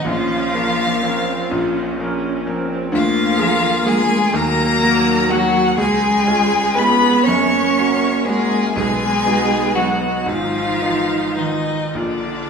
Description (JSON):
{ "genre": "classical, slow romantic movement for piano quintet", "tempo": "34-44 BPM (dotted quarters)", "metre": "6/8", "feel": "rubato", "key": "Eb minor", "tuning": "A4 = 440 Hz", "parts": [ { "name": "warm violin", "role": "melody", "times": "0.0-12.5 s", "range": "D5 to Db6", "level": "-20 LUFS", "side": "left 4 dB", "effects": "none" }, { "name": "rich cello", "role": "second line", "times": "0.0-12.5 s", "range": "D3 to Db4", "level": "-20 LUFS", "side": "right 2 dB", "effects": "none" }, { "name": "rich violin", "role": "second line", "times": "0.0-12.5 s", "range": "D4 to Db5", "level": "-23 LUFS", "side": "left 1 dB", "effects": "none" }, { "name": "bright concert grand piano", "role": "accompaniment", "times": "0.0-12.5 s", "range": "Gb1 to Bb4", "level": "-22 LUFS", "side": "left 1 dB", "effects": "none" }, { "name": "rich viola", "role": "accompaniment", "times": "0.0-12.5 s", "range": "Gb3 to F4", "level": "-25 LUFS", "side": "right 2 dB", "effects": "none" } ], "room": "wet recital hall reverb, RT60 1.6 s", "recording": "heard from further back in the room", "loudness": "-15 LUFS", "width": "side -6 dB against mid", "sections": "0.0-12.5 A section", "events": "none", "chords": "0.1 Bbm; 2.9 Bb7/D; 4.3 Ebm; 5.8 Db; 7.3 Gb; 8.8 B; 10.3 Fm7b5/Ab; 11.9 Bb", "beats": "| 0.06 1.50 | 2.92 4.34 | 5.78 7.26 | 8.75 10.28 | 11.95" }